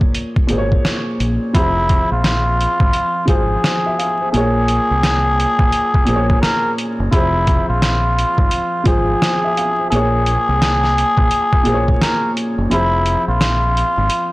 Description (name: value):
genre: hip hop, boom-bap hip-hop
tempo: 86 BPM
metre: 4/4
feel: swing 63% on 16ths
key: F harmonic minor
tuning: A4 = 440 Hz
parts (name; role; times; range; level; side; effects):
- dark upright piano; accompaniment; 0.0-14.3 s; Bb2 to F5; -21 LUFS; equal; high-pass filter, low-pass filter
- trip hop sampler-style drum kit; drums; 0.0-14.3 s; hi-hat, kick drum, snare drum; -18 LUFS; equal; none
- deep dub fingered electric bass; bass; 0.4-14.1 s; F1 to C2; -19 LUFS; equal; transformer saturation
- trumpet with cup mute; melody; 1.6-14.3 s; E4 to Bb4; -17 LUFS; equal; high-pass filter, low-pass filter, digital delay
room: studio reverb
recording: blown-out, overdriven recording, vinyl crackle, overdrive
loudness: -14 LUFS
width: side -20 dB against mid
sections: 0.0-1.5 A section; 1.5-14.3 B section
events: kick muted 12.7-14.1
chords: 0.0 Bbm7; 1.5 Fm; 4.3 Bbm7; 7.1 Fm; 9.9 Bbm7; 12.7 Fm